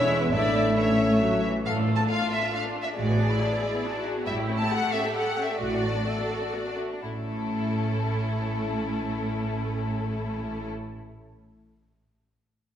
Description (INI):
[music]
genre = quick classical-period movement for symphony orchestra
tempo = 121-140 BPM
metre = 3/4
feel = straight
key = A major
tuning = A4 = 441 Hz
[part]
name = rich studio violin section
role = melody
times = 0.0-10.7 s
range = A4 to A5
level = -31 LUFS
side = left 2 dB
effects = none
[part]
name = bright clarinet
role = second line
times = 0.0-1.4 s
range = E5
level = -31 LUFS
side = equal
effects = none
[part]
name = mellow hollow silver concert flute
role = second line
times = 0.0-1.4 s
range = B4 to D5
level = -36 LUFS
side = left 1 dB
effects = none
[part]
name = warm studio violin section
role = second line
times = 0.0-10.7 s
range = G3 to D5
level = -33 LUFS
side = left 2 dB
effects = none
[part]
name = clear bassoon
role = accompaniment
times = 0.0-1.4 s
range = G#3 to A3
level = -31 LUFS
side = right 1 dB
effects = none
[part]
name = warm studio viola section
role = accompaniment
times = 0.0-10.7 s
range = E3 to A4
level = -31 LUFS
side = right 1 dB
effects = none
[part]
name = mellow French horn section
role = sustained chords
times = 0.0-1.4 s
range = B3 to D4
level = -28 LUFS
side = left 2 dB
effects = none
[part]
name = rich studio double bass section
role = bass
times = 0.0-10.7 s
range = E1 to A1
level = -32 LUFS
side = right 2 dB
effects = none
[part]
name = warm studio cello section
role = bass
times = 0.0-10.7 s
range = E2 to A2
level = -30 LUFS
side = equal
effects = none
[sound]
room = wet recital hall reverb, RT60 1.7 s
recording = recorded in a church or concert hall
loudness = -24 LUFS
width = side -10 dB against mid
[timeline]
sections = 0.0-1.7 A section; 1.7-7.0 B section; 7.0-9.9 C section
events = slowing down 3.6-7.0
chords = 0.3 A; 1.7 Dm/A; 3.0 E7/A; 4.3 A7; 5.6 D/A; 7.0 A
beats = | 0.31 0.76 1.21 | 1.66 2.10 2.54 | 2.97 3.40 3.83 | 4.27 4.70 5.15 | 5.59 6.05 6.53 | 7.02 7.50 7.98 | 8.47 8.95 9.43